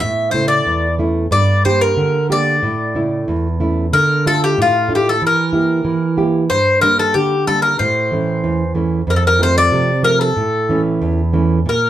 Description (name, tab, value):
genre	greek folk, Greek bouzouki band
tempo	93 BPM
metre	2/4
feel	straight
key	unclear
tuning	A4 = 440 Hz
part	Greek bouzouki	melody	0.0-11.9 s	F4 to E5	-15 LUFS	left 2 dB	none
part	nylon-string guitar	accompaniment	0.0-11.9 s	E2 to G4	-16 LUFS	right 2 dB	none
room	wet studio ambience, RT60 0.5 s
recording	band playing live in one room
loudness	-13 LUFS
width	side -12 dB against mid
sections	0.0-3.9 A section; 3.9-11.9 B section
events	none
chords	0.0 A; 1.3 Gm; 2.6 A; 3.9 Dm; 5.2 Edim; 6.5 Gm; 7.8 A; 9.1 F; 10.4 A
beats	| 0.02 0.67 | 1.32 1.97 | 2.62 3.27 | 3.91 4.56 | 5.21 5.85 | 6.50 7.14 | 7.79 8.43 | 9.07 9.72 | 10.36 11.01 | 11.65